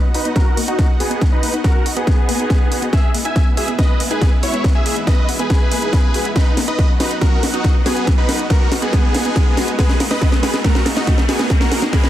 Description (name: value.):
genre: uplifting trance.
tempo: 140 BPM.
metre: 4/4.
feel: straight.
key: B major.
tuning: A4 = 441 Hz.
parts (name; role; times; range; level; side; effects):
big supersaw lead; melody; 0.0-12.1 s; B3 to G#5; -21 LUFS; equal; sidechain pumping, low-pass filter, dub echo.
supersaw pad; sustained chords; 0.0-12.1 s; G#3 to F#5; -28 LUFS; right 1 dB; vintage 12-bit sampler grit, sidechain pumping.
riser; sound effects; 2.0-12.1 s; none; -29 LUFS; right 1 dB; none.
analog pluck; arpeggios; 0.1-12.0 s; A#3 to F#4; -27 LUFS; left 2 dB; chorus, sidechain pumping, dub echo.
house drum kit; drums; 0.1-12.1 s; hi-hat, snare drum; -22 LUFS; equal; overdrive, sidechain pumping on hats.
electronic kick drum; drums; 0.4-12.0 s; none; -15 LUFS; equal; overdrive.
room: little or no reverb.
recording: dense, heavily limited modern master.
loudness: -14 LUFS.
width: side -12 dB against mid.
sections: 0.0-12.1 A section.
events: build-up 0.0-12.1; drum fill 0.0-12.1; filter sweep on supersaw synth 0.0-12.1; filter sweep on synth pluck 0.0-12.1; riser 2.0-12.1.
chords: 0.0 B; 2.9 E; 6.4 B; 9.8 G#madd9.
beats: 0.36 0.79 | 1.22 1.64 2.07 2.50 | 2.93 3.36 3.79 4.21 | 4.64 5.07 5.50 5.93 | 6.36 6.79 7.21 7.64 | 8.07 8.50 8.93 9.36 | 9.79 10.21 10.64 11.07 | 11.50 11.93.